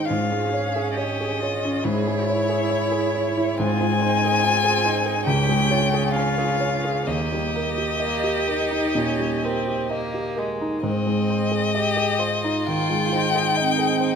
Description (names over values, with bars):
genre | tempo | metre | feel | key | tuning
classical, slow romantic movement for piano quartet | 62-72 BPM | 4/4 | rubato | Ab major | A4 = 442 Hz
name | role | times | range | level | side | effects
warm violin | melody | 0.0-14.2 s | Db5 to Ab5 | -24 LUFS | left 6 dB | none
rich cello | second line | 0.0-14.2 s | C4 to Ab4 | -29 LUFS | right 9 dB | none
rich violin | second line | 0.0-14.2 s | Ab3 to G4 | -30 LUFS | left 1 dB | none
warm concert grand piano | accompaniment | 0.0-14.2 s | Db2 to Ab5 | -23 LUFS | right 1 dB | none
room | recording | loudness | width
wet recital hall reverb, RT60 1.5 s | none | -20 LUFS | side -6 dB against mid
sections
0.0-14.2 A section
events
none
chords
0.1 Db/Ab; 1.8 Dbm/Ab; 3.6 Ab; 5.3 Db; 7.1 Eb; 10.9 Ab